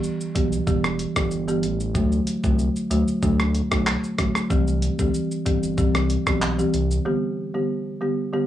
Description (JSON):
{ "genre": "dancehall", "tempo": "94 BPM", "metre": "4/4", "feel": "straight", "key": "unclear", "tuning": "A4 = 440 Hz", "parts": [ { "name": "folk marimba with soft mallets", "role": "accompaniment", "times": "0.0-8.5 s", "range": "D3 to G4", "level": "-23 LUFS", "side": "equal", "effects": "plate reverb" }, { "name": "breakbeat sampler-style drum kit", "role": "drums", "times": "0.0-7.0 s", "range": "handclaps, hi-hat, kick drum, rim click, shaker", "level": "-25 LUFS", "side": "equal", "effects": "vintage 12-bit sampler grit" }, { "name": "round analog bass", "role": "bass", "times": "0.4-7.0 s", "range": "E1 to D2", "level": "-25 LUFS", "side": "right 1 dB", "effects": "none" } ], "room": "light reverb", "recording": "small room ambience", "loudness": "-20 LUFS", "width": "side -12 dB against mid", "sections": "0.0-8.5 A section", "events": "break 7.1-8.5", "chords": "0.0 Em; 1.9 D; 4.5 C; 7.1 G" }